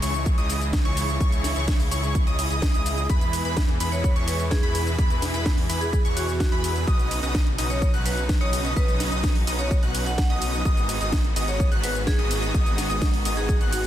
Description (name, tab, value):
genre	EDM, festival progressive house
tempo	127 BPM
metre	4/4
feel	straight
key	E major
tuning	A4 = 440 Hz
part	rich chamber string section	sustained chords	0.0-13.9 s	B2 to F#4	-34 LUFS	left 1 dB	sidechain pumping
part	plucky unison lead	arpeggios	0.0-13.9 s	B5 to F#6	-31 LUFS	equal	wide subtle chorus, sidechain pumping, ping-pong delay
part	supersaw chords	riff	0.0-13.9 s	B3 to F#5	-32 LUFS	right 1 dB	sidechain pumping, ping-pong delay
part	wide detuned saw bass	bass	0.0-13.9 s	G#1 to E2	-28 LUFS	equal	chorus, sidechain pumping
part	house drum kit	drums	0.0-13.9 s	hi-hat, ride cymbal, shaker, snare drum	-31 LUFS	right 1 dB	overdrive
part	electronic kick drum	drums	0.3-13.6 s	none	-22 LUFS	equal	overdrive
part	vibraphone with medium hard mallets	melody	3.9-13.9 s	F#4 to F#5	-32 LUFS	right 1 dB	ping-pong delay
room	digital ambience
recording	dense, heavily limited modern master, faint mains hum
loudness	-21 LUFS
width	side -12 dB against mid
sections	0.0-13.9 A section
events	none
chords	0.0 C#m; 3.1 E; 6.9 Badd9; 10.7 G#m7